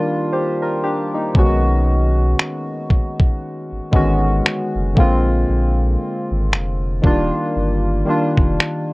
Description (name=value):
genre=contemporary R&B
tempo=58 BPM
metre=4/4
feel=swing 58% on 16ths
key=Eb major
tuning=A4 = 441 Hz
part: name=soft electric-piano-like synth keys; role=accompaniment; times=0.0-8.9 s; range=C#3 to C5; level=-19 LUFS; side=equal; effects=chorus
part: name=dusty soul sampler-style drum kit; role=drums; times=1.3-8.9 s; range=finger snaps, kick drum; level=-15 LUFS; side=equal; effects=none
part: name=warm sub bass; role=bass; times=1.4-8.6 s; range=Eb1 to B1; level=-18 LUFS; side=equal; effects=none
room=little or no reverb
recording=worn, warbling old tape, cassette tape, warbly pitch drift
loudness=-15 LUFS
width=side -23 dB against mid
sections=0.0-8.9 A section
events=none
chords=0.0 Ebmaj7; 1.3 B69; 5.0 Bb9; 7.0 Ebmaj7